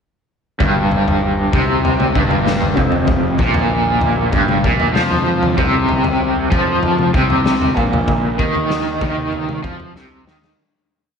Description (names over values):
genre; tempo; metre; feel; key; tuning
psychedelic rock; 96 BPM; 4/4; straight; unclear; A4 = 440 Hz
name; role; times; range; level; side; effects
raw garage guitar; riff; 0.6-10.6 s; F2 to F3; -16 LUFS; right 1 dB; overdrive, tremolo
fuzz fingered electric bass; bass; 0.6-10.5 s; F1 to F2; -23 LUFS; equal; overdrive
raw garage drum kit; drums; 0.6-10.6 s; kick drum, snare drum, toms; -19 LUFS; left 2 dB; none
room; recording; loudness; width
moderate echo chamber reverb, RT60 1.7 s, small room ambience; 1960s-style stereo; -14 LUFS; side -6 dB against mid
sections
0.6-10.6 riff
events
fade-out 8.1-10.6; drum fill 9.9-10.6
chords
0.6 Fsus24; 5.6 Bbsus24